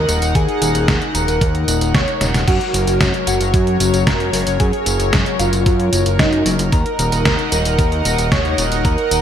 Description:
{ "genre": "synthwave", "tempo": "113 BPM", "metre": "4/4", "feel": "straight", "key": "Eb minor", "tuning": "A4 = 440 Hz", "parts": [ { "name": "mellow synth brass", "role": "melody", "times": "0.0-9.2 s", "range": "Eb4 to Db5", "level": "-22 LUFS", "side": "right 1 dB", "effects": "chorus, digital delay" }, { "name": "soft synth bell", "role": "second line", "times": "0.0-9.2 s", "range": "Eb5 to Db6", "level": "-29 LUFS", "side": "equal", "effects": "chorus, digital delay" }, { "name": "chorused pulse-width pad", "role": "sustained chords", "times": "0.0-9.2 s", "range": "Gb3 to Gb5", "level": "-22 LUFS", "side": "left 2 dB", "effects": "sidechain pumping" }, { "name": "fat analog bass", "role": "bass", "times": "0.0-9.2 s", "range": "Eb1 to Gb2", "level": "-19 LUFS", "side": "equal", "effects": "none" }, { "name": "detuned 8-bit digital drum machine", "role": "drums", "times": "0.1-9.2 s", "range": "crash cymbal, hi-hat, snare drum, tambourine", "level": "-20 LUFS", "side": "equal", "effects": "studio reverb, gated reverb" }, { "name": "electronic kick drum", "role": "drums", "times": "0.4-9.0 s", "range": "none", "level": "-19 LUFS", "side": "equal", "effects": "studio reverb" } ], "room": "light reverb", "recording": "bright 1980s-style digital production", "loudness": "-14 LUFS", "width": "side -9 dB against mid", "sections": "0.0-9.2 A section", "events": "drum fill 2.2", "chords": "0.0 Ebm; 2.5 Gb; 6.7 Ebm" }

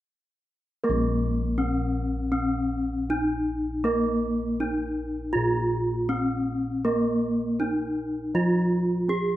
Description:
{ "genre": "Javanese gamelan", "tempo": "80 BPM", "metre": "4/4", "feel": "straight", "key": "Bb slendro", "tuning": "A4 = 440 Hz", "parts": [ { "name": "gamelan-type bronze metallophone", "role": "melody", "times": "0.8-9.4 s", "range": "Bb3 to Ab4-40c", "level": "-25 LUFS", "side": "equal", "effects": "none" }, { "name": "gamelan-type bossed gongs", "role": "bass", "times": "0.8-9.4 s", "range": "Bb1 to Bb4", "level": "-28 LUFS", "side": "equal", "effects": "none" } ], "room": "moderate recital hall reverb, RT60 1.3 s", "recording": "none", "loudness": "-23 LUFS", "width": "side -14 dB against mid", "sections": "0.8-9.4 A section", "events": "none", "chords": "none" }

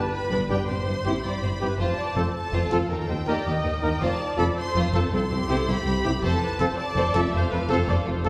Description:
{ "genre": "cinematic", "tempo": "108 BPM (dotted quarters)", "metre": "12/8", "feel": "straight", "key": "unclear", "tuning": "A4 = 436 Hz", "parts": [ { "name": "clear symphonic violin section", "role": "melody", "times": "0.0-8.3 s", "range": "E5 to C6", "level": "-35 LUFS", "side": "equal", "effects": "none" }, { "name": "rich symphonic viola section", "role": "accompaniment", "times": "0.0-8.3 s", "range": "G4 to Eb5", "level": "-33 LUFS", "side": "equal", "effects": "none" }, { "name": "rich symphonic violin section", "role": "second line", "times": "0.3-8.3 s", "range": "C4 to Eb5", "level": "-35 LUFS", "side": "equal", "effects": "none" }, { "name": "rich symphonic cello section", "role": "bass", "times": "0.3-8.3 s", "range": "C2 to G2", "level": "-31 LUFS", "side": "equal", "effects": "none" }, { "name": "rich symphonic double bass section", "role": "bass", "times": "0.3-8.3 s", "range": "F1 to Eb2", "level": "-31 LUFS", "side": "equal", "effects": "none" }, { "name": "mellow French horn section", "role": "sustained chords", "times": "0.5-8.3 s", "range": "Bb3 to F4", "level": "-34 LUFS", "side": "equal", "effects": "none" }, { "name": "warm trumpet", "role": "stabs", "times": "0.5-8.3 s", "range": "G4 to Bb4", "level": "-34 LUFS", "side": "equal", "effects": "none" } ], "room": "wet scoring stage reverb, RT60 2.0 s", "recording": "heard from further back in the room", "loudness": "-25 LUFS", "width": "mono", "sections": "0.0-8.3 A section", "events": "none", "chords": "0.0 G; 0.7 C/G; 1.8 F; 2.9 Eb; 4.0 F; 5.1 C; 6.2 F" }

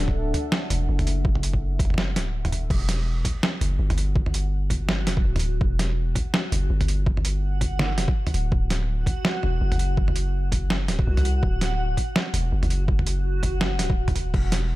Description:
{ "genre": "half-time drum and bass", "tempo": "165 BPM", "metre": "4/4", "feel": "swing 58% on 16ths, half-time", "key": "unclear", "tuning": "A4 = 440 Hz", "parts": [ { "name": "dark analog pad", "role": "sustained chords", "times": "0.0-2.7 s", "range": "D4 to F#5", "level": "-33 LUFS", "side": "left 1 dB", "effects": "chorus, sidechain pumping" }, { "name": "long sustained 808-style bass", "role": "bass", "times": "0.0-14.8 s", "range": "D1 to C2", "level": "-24 LUFS", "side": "equal", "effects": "none" }, { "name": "electronic kick drum", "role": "drums", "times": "0.1-14.4 s", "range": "none", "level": "-24 LUFS", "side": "equal", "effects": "overdrive" }, { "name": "boom bap sampler-style drum kit", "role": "drums", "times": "0.3-14.6 s", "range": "crash cymbal, hi-hat, snare drum, toms", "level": "-26 LUFS", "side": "right 1 dB", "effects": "overdrive" }, { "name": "backwards swelling texture", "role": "texture", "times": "3.8-14.8 s", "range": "F#4", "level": "-34 LUFS", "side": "equal", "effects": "built-in reverb" } ], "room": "digital ambience", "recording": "dark, warm production", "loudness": "-21 LUFS", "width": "side -18 dB against mid", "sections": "0.0-2.7 A section; 2.7-14.8 A section", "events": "drop 0.0-2.7, 2.7-14.8", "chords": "0.0 D; 2.7 Emadd9; 8.5 D" }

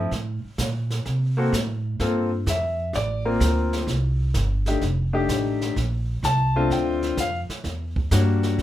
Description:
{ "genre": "jazz piano trio", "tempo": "128 BPM", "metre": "4/4", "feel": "swing 68% on 8ths", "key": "unclear", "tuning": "A4 = 438 Hz", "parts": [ { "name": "clear concert grand piano", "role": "melody", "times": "0.0-8.6 s", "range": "G3 to A5", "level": "-24 LUFS", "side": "left 2 dB", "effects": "none" }, { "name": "upright bass", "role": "bass", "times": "0.0-8.6 s", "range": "F1 to C3", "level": "-24 LUFS", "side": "right 1 dB", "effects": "none" }, { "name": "jazz brush drum kit", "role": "drums", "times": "0.1-8.6 s", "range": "brushed snare drum, hi-hat, kick drum, snare drum", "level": "-30 LUFS", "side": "right 2 dB", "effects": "none" } ], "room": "moderate studio ambience, RT60 0.5 s", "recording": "band playing live in one room", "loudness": "-21 LUFS", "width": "side -12 dB against mid", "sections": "0.0-8.6 A section", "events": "none", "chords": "0.1 Am; 2.0 Gm11; 3.9 C5; 4.8 F13; 5.8 Bbmaj7; 7.6 Em7b5" }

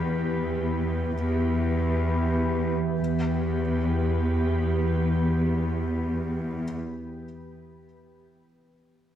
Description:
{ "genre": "cinematic, hybrid orchestral and electronic film score", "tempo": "free time", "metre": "none", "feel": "none", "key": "E minor", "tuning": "A4 = 439 Hz", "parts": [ { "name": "glassy FM pad", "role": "sustained chords", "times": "0.0-6.8 s", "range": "E3 to B4", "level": "-28 LUFS", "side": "equal", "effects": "ensemble chorus, built-in reverb" }, { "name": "rich symphonic cello section", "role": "bass", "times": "0.0-6.7 s", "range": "E2", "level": "-26 LUFS", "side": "equal", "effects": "none" }, { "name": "felt-muted upright piano", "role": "texture", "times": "0.0-3.0 s", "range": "B4 to G6", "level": "-46 LUFS", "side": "equal", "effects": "none" } ], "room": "moderate scoring stage reverb, RT60 1.6 s", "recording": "close, detailed microphones", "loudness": "-24 LUFS", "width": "side -10 dB against mid", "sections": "0.0-3.0 A section; 3.0-6.6 B section", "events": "none", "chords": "0.0 Em" }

